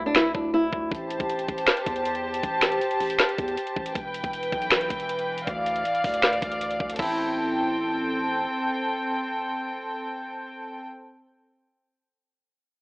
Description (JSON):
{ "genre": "hip hop, trap", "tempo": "158 BPM", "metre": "4/4", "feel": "half-time", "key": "A minor", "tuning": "A4 = 440 Hz", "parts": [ { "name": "long sustained 808-style bass", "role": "bass", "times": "0.0-8.5 s", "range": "E1 to E2", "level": "-38 LUFS", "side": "equal", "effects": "none" }, { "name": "flamenco guitar", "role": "melody", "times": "0.1-0.9, 7.0-8.1 s", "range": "D4 to E4", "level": "-26 LUFS", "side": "equal", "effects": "none" }, { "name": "trap drum kit", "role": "drums", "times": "0.1-7.1 s", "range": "crash cymbal, finger snaps, hi-hat, kick drum, snare drum", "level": "-24 LUFS", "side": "equal", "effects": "none" }, { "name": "dark symphonic string section", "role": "sustained chords", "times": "0.9-10.8 s", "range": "E3 to A5", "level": "-26 LUFS", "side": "equal", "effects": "none" } ], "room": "digital ambience", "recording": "dry, gritty hardware recording, cassette tape, AM radio sound", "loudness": "-23 LUFS", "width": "side -26 dB against mid", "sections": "0.0-7.0 A section; 7.0-10.0 B section", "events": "break 0.0-0.9, 0.9-7.0", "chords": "0.0 Dsus2; 0.9 Am7; 4.0 Em; 5.5 Dmadd9; 7.0 Am7", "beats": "0.16 0.54 | 0.92 1.29 1.68 2.05 | 2.43 2.81 3.19 3.57 | 3.95 4.33 4.71 5.09 | 5.47 5.85 6.23 6.61 | 6.99 7.37 7.75 8.13 | 8.51 8.89 9.27 9.65" }